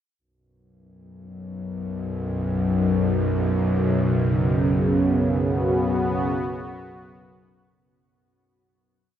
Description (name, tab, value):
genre	dark ambient drone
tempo	free time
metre	none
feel	none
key	unclear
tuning	A4 = 440 Hz
part	bowed-like drone	drone	1.3-7.9 s	B1 to F#2	-22 LUFS	left 1 dB	built-in reverb
part	sweeping resonant pad	sustained chords	4.0-7.8 s	C#3 to F#4	-23 LUFS	right 2 dB	chorus
room	wet huge ambient reverb, RT60 7.0 s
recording	dark, warm production, nothing above 10.4 kHz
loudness	-20 LUFS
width	side -10 dB against mid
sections	0.2-7.8 A section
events	fade-in on synth drone 0.2-7.8; fade-out 4.0-7.8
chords	0.2 Bsus2